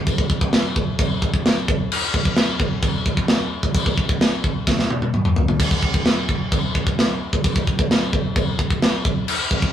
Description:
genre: metal.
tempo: 130 BPM.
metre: 4/4.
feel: straight.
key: none.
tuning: none.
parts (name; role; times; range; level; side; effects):
tight metal drum kit; drums; 0.1-9.7 s; china cymbal, crash cymbal, kick drum, snare drum, toms; -18 LUFS; equal; none.
room: moderate studio reverb, RT60 0.6 s.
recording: rough rehearsal-room recording.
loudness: -18 LUFS.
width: side -10 dB against mid.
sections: 0.0-9.7 A section.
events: drum fill 4.7-5.6.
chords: none.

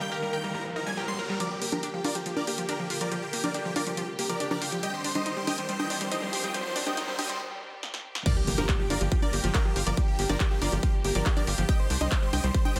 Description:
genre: uplifting trance.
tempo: 140 BPM.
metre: 4/4.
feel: straight.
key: G minor.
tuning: A4 = 440 Hz.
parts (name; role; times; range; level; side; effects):
big supersaw lead; melody; 0.0-12.8 s; G4 to C6; -35 LUFS; equal; phaser, sidechain pumping, delay.
dark concert grand piano; second line; 0.0-1.3 s; F5; -45 LUFS; equal; digital delay.
clear studio string section; sustained chords; 0.0-12.8 s; D3 to Bb4; -41 LUFS; equal; sidechain pumping.
analog pluck; arpeggios; 0.0-12.8 s; F3 to Bb4; -38 LUFS; equal; chorus, sidechain pumping, delay.
riser and impact; sound effects; 0.0-10.0 s; none; -40 LUFS; equal; none.
punchy analog drum machine; drums; 1.4-12.8 s; congas, crash cymbal, handclaps, hi-hat, snare drum; -35 LUFS; equal; sidechain pumping on hats, low-pass filter on hats, sidechain pumping on perc, low-pass filter on perc, low-pass filter on snare, sidechain pumping on cymbals, low-pass filter on cymbals.
analog pluck; second line; 8.3-12.8 s; G4 to G5; -39 LUFS; equal; chorus, sidechain pumping, delay.
electronic kick drum; drums; 8.3-12.6 s; none; -28 LUFS; equal; none.
tight sequencer bass; bass; 8.5-12.8 s; G1 to C2; -31 LUFS; equal; sidechain pumping.
room: moderate digital room reverb, RT60 1.0 s, digital ambience.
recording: high-pass filter.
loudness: -28 LUFS.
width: mono.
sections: 0.0-1.4 A section; 1.4-8.3 B section; 8.3-12.8 C section.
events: riser 0.0-1.4, 1.4-7.4; build-up 1.4-8.3; filter sweep on synth pluck 1.4-8.3; break 7.4-8.3; drum fill 7.8-8.3; drop 8.3-12.8; impact 8.3-10.0.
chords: 0.0 Eb; 1.4 Gm7; 4.8 Cmadd9; 8.3 Gm7; 11.7 Cmadd9.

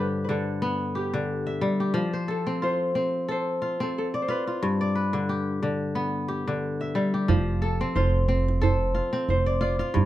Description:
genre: west african traditional, West African string and xylophone music.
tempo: 90 BPM.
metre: 4/4.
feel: swing 56% on 16ths.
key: F lydian.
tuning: A4 = 440 Hz.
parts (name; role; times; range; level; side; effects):
Celtic harp; melody; 0.0-10.1 s; F4 to D5; -29 LUFS; equal; none.
kora; arpeggios; 0.0-10.1 s; G2 to E5; -26 LUFS; left 1 dB; none.
upright bass; bass; 7.3-10.1 s; F1 to G1; -25 LUFS; right 1 dB; none.
djembe; percussion; 7.3-10.1 s; none; -26 LUFS; right 5 dB; none.
room: moderate studio reverb, RT60 0.5 s.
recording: dark, warm production.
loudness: -24 LUFS.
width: side -14 dB against mid.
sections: 0.0-7.3 A section; 7.3-10.1 A section.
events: none.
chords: 0.0 G; 2.0 F; 4.6 G; 7.3 F.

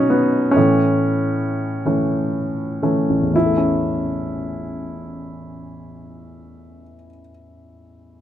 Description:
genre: classical, lyrical solo piano.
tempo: 38-52 BPM (dotted quarters).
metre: 6/8.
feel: rubato.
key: A major.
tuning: A4 = 439 Hz.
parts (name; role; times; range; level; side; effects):
dark upright piano; solo; 0.0-8.2 s; A1 to E4; -18 LUFS; equal; none.
room: light reverb.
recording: close, detailed microphones.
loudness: -17 LUFS.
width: side -11 dB against mid.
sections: 0.0-3.3 A section; 3.3-6.4 B section.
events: slowing down 0.0-3.3.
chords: 0.0 B; 0.6 A.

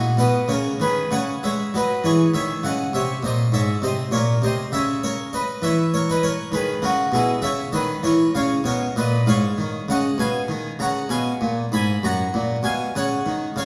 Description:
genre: classical, baroque-style suite movement for harpsichord.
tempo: 66 BPM (dotted quarters).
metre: 12/8.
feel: rubato.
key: unclear.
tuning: A4 = 439 Hz.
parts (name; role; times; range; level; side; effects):
harpsichord; solo; 0.0-13.7 s; F#2 to B5; -22 LUFS; equal; none.
room: wet recital hall reverb, RT60 1.8 s.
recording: heard from further back in the room.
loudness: -22 LUFS.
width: mono.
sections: 0.0-13.7 A section.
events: none.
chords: 0.0 B; 1.1 C#m; 2.9 G#; 4.7 C#m; 8.3 C#7; 12.0 F#.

